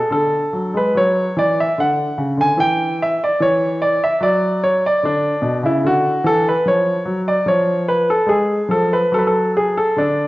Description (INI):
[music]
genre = classical, baroque-style suite movement for grand piano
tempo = 73 BPM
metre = 3/4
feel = rubato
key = unclear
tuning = A4 = 440 Hz
[part]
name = clear concert grand piano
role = solo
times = 0.0-10.3 s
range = B2 to G#5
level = -15 LUFS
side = equal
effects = none
[sound]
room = wet recital hall reverb, RT60 1.4 s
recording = worn, warbling old tape, cassette tape, warbly pitch drift, nothing above 7.7 kHz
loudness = -15 LUFS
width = side -18 dB against mid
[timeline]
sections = 0.0-10.3 A section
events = none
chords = 0.1 D; 2.6 N.C.; 5.0 Bm; 6.6 C#/E#; 7.5 Fdim; 9.1 N.C.